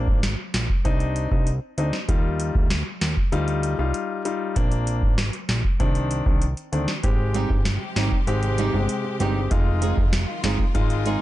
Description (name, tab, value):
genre	dancehall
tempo	97 BPM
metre	4/4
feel	straight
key	unclear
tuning	A4 = 440 Hz
part	clear concert grand piano	accompaniment	0.0-11.2 s	Eb3 to G4	-27 LUFS	left 4 dB	none
part	fat analog bass	bass	0.0-11.2 s	F1 to Eb2	-24 LUFS	equal	none
part	booming analog drum machine	drums	0.1-11.2 s	hi-hat, kick drum, rim click, snare drum	-22 LUFS	equal	none
part	bright studio string section	sustained chords	7.0-11.2 s	C3 to G4	-32 LUFS	left 1 dB	sidechain pumping
part	flamenco guitar	arpeggios	7.3-11.2 s	G3 to Ab4	-28 LUFS	right 8 dB	none
room	little or no reverb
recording	nothing above 10.4 kHz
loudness	-20 LUFS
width	side -15 dB against mid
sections	0.0-7.0 A section; 7.0-11.2 B section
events	none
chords	0.0 Bbadd9; 0.8 Cmadd9; 2.1 Ebadd9; 4.6 Bbadd9; 5.8 Cmadd9; 7.0 Abmaj7; 9.5 Fm7